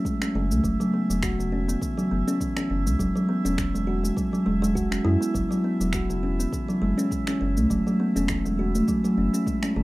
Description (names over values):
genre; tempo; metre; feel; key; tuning
organic downtempo; 102 BPM; 4/4; swing 55% on 16ths; unclear; A4 = 441 Hz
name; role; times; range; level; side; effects
electronic kick drum; drums; 0.0-9.6 s; none; -32 LUFS; equal; studio reverb
drifting glass-harmonics texture; texture; 0.0-9.8 s; E4 to E5; -38 LUFS; right 3 dB; chorus, built-in reverb
kalimba; arpeggios; 0.1-9.8 s; C#3 to F#4; -23 LUFS; equal; digital delay, plate reverb
electronic shaker and finger snaps; drums; 0.1-9.7 s; none; -34 LUFS; equal; studio reverb
warm sub bass; bass; 0.3-9.8 s; E1 to F#2; -27 LUFS; equal; sidechain pumping
room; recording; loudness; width
moderate small room reverb, RT60 0.6 s; rough home demo mix; -22 LUFS; side -19 dB against mid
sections
0.0-9.8 A section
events
none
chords
0.0 F#7(no3); 0.6 E5; 5.3 F#7(no3)